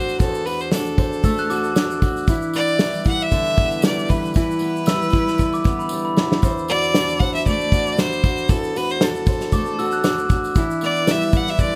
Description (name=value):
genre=acoustic pop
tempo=116 BPM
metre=4/4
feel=swing 55% on 16ths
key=unclear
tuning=A4 = 439 Hz
part: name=bright violin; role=melody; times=0.0-11.8 s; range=A4 to F#5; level=-26 LUFS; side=equal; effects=none
part: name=fingerpicked steel-string acoustic guitar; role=accompaniment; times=0.0-11.8 s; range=E2 to C5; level=-26 LUFS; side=equal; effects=none
part: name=unplugged drum kit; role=drums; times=0.1-11.8 s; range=kick drum, shaker, snare drum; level=-22 LUFS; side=equal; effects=none
part: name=tambourine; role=percussion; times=0.1-11.7 s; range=none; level=-42 LUFS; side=equal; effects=none
part: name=glockenspiel with rubber mallets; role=second line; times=1.2-6.4, 9.5-10.7 s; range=B5 to F#6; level=-31 LUFS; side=equal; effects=none
room=little or no reverb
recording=close, detailed microphones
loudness=-20 LUFS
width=mono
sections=0.0-6.4 A section; 6.4-11.8 A section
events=drum fill 5.9-6.4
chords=0.0 D7/E; 2.3 Em7; 6.4 D7/E; 10.6 Em7